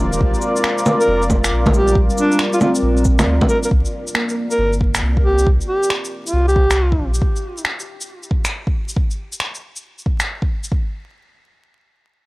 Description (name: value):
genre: future garage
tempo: 137 BPM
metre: 4/4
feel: swing 65% on 16ths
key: unclear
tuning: A4 = 441 Hz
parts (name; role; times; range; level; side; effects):
- mellow alto saxophone; melody; 0.0-7.1 s; D4 to Bb4; -20 LUFS; equal; analog delay
- bright tine electric piano; accompaniment; 0.0-5.5 s; Eb3 to C4; -24 LUFS; right 1 dB; medium stereo tremolo, sidechain pumping, low-pass filter, tape echo
- dark analog pad; sustained chords; 0.0-7.2 s; C4 to D5; -23 LUFS; left 1 dB; chorus, sidechain pumping
- warm sub bass; bass; 0.0-7.2 s; Eb1 to D2; -18 LUFS; equal; sidechain pumping
- electronic shaker, cabasa, finger snaps and bongos; drums; 0.1-10.7 s; none; -21 LUFS; equal; none
- electronic kick drum; drums; 0.2-10.8 s; none; -18 LUFS; equal; none
room: digital ambience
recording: dry, gritty hardware recording, vinyl crackle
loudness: -15 LUFS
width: side -21 dB against mid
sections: 0.0-3.7 A section; 3.7-10.7 B section; 10.7-12.3 C section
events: filter sweep on tine electric piano 3.7-5.5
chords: 0.2 Bb7; 3.7 C5; 7.2 N.C.